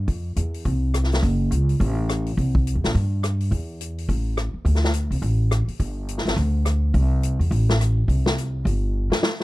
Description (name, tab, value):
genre	jazz, big band swing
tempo	210 BPM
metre	4/4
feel	swing 60% on 8ths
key	unclear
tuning	A4 = 440 Hz
part	upright bass	bass	0.0-9.2 s	F#1 to G2	-21 LUFS	equal	none
part	swinging big-band drum kit	drums	0.1-9.4 s	hi-hat, kick drum, rim click, snare drum	-24 LUFS	left 1 dB	none
room	little or no reverb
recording	dry, close 1970s-style studio recording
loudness	-20 LUFS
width	side -18 dB against mid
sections	0.0-9.2 A section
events	drum fill 8.9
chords	none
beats	| 0.08 0.37 0.65 0.94 | 1.23 1.51 1.80 2.08 | 2.37 2.66 2.94 3.23 | 3.52 3.80 4.09 4.37 | 4.66 4.94 5.23 5.51 | 5.80 6.08 6.37 6.65 | 6.94 7.22 7.51 7.79 | 8.08 8.37 8.65 8.94 | 9.22